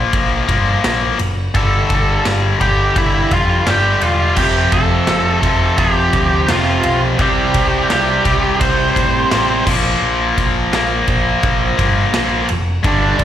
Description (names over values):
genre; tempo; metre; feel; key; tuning
quiet-loud alternative rock; 85 BPM; 4/4; straight; unclear; A4 = 440 Hz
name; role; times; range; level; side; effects
distorted electric guitar; riff; 0.0-13.2 s; F2 to C4; -18 LUFS; left 6 dB; overdrive, slapback echo
overdriven picked electric bass; bass; 0.0-13.2 s; E1 to A2; -20 LUFS; right 1 dB; none
big rock drum kit; drums; 0.1-13.2 s; crash cymbal, kick drum, ride cymbal, snare drum; -20 LUFS; equal; none
octave-fuzz lead guitar; melody; 1.5-13.2 s; D4 to C6; -17 LUFS; right 2 dB; distortion, slapback echo
thick fuzz guitar; riff; 4.4-13.2 s; F2 to C4; -21 LUFS; right 12 dB; distortion, slapback echo
room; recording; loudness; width
studio reverb; live gig heard through the venue's PA, club reverb; -12 LUFS; side -10 dB against mid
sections
0.0-13.2 A section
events
none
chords
0.0 Bb5; 1.6 G5; 4.4 F; 7.2 C5; 9.7 Bb5